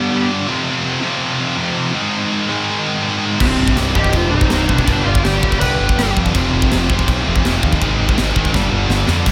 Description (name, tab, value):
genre	heavy metal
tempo	164 BPM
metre	4/4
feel	straight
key	unclear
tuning	A4 = 436 Hz
part	high-gain lead guitar	melody	0.0-0.3, 3.4-6.1 s	B3 to B4	-24 LUFS	equal	distortion, delay
part	bluesy overdriven lead guitar	second line	0.0-0.2, 3.5-6.1 s	G4 to G5	-29 LUFS	equal	distortion
part	high-gain distorted guitar	riff	0.0-9.3 s	C2 to Eb3	-26 LUFS	equal	distortion
part	scooped high-gain guitar	riff	0.0-9.3 s	C2 to Ab3	-23 LUFS	equal	distortion
part	sludgy distorted guitar	riff	0.0-9.3 s	C2 to Ab3	-25 LUFS	equal	overdrive
part	dark studio string section	sustained chords	3.4-9.3 s	C3 to D5	-34 LUFS	equal	none
part	fuzz picked electric bass	bass	3.4-9.3 s	C1 to F2	-22 LUFS	equal	overdrive
part	tight metal drum kit	drums	3.4-9.3 s	china cymbal, crash cymbal, kick drum, snare drum	-21 LUFS	equal	none
room	small room reverb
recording	none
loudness	-16 LUFS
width	mono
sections	0.0-9.3 A section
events	drum fill 8.5-9.3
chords	0.5 F5; 1.9 Ab5; 3.4 Cm; 4.9 G; 6.3 Fm; 7.8 Ab; 8.5 G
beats	0.11 | 0.48 0.84 1.21 1.58 | 1.94 2.31 2.68 3.04 | 3.41 3.77 4.14 4.51 | 4.87 5.24 5.61 5.97 | 6.34 6.70 7.07 7.43 | 7.80 8.17 8.53 8.90 | 9.26